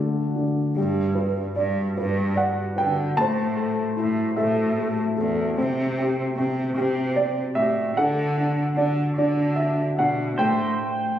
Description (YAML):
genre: folk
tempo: 50 BPM (dotted quarters)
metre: 6/8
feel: straight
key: G major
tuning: A4 = 440 Hz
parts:
  - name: warm upright piano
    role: melody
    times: 0.0-11.2 s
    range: D3 to A5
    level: -23 LUFS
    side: equal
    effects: tape echo
  - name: clear cello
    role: bass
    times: 0.8-10.7 s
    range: E2 to D3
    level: -25 LUFS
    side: equal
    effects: none
  - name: pedal steel guitar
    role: second line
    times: 10.4-11.2 s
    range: C5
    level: -28 LUFS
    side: right 2 dB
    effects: none
room: light reverb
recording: recorded on a phone in the room, club reverb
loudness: -21 LUFS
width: side -10 dB against mid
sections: 0.0-10.4 A section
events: none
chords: 0.0 D; 0.8 G; 3.2 Am; 5.6 C5; 8.0 D; 10.4 Am7